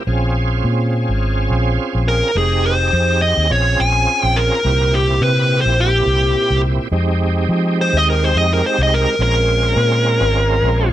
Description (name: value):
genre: straight-eighth soul blues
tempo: 105 BPM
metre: 4/4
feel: swing 55% on 16ths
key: F minor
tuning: A4 = 440 Hz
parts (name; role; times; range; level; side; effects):
- bright tonewheel organ; accompaniment; 0.0-10.9 s; Bb2 to Ab4; -21 LUFS; right 4 dB; slow rotary speaker, overdrive, chorus vibrato
- vintage muted fingered electric bass; bass; 0.1-10.9 s; F1 to F3; -17 LUFS; equal; none
- dark smooth lead guitar; melody; 2.1-10.9 s; G4 to Ab5; -16 LUFS; equal; overdrive
room: light reverb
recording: none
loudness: -13 LUFS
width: side -12 dB against mid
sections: 0.0-6.9 A section; 6.9-10.9 B section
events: lead electric guitar solo 6.9-10.9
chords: 0.1 Bbm7; 2.4 Fm7; 3.5 Bbm7; 4.6 C7; 6.9 Fm7; 9.2 Bbm7